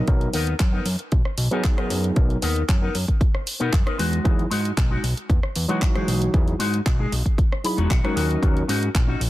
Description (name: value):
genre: nu-disco, nu disco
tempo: 115 BPM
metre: 4/4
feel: straight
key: B major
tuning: A4 = 441 Hz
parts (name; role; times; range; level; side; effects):
- overdriven tine electric piano; accompaniment; 0.0-8.6 s; E3 to A#4; -27 LUFS; right 1 dB; sidechain pumping, low-pass filter, tape echo
- electric guitar with an envelope filter; riff; 0.0-9.2 s; G#3 to B5; -27 LUFS; left 3 dB; lush chorus, low-pass filter, tape echo
- fat analog bass; bass; 0.0-9.3 s; E1 to B2; -24 LUFS; equal; none
- electronic kick drum; drums; 0.1-9.1 s; none; -20 LUFS; equal; none
- house drum kit; drums; 0.1-9.3 s; handclaps, hi-hat, rim click; -30 LUFS; equal; soft clipping on snare
room: little or no reverb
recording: dense, heavily limited modern master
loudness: -19 LUFS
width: side -16 dB against mid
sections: 0.0-9.3 A section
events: filter sweep on tine electric piano 0.0-9.3; clean electric guitar fill 7.4-8.4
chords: 0.0 Bmaj7; 4.0 Emaj9; 8.2 D#m7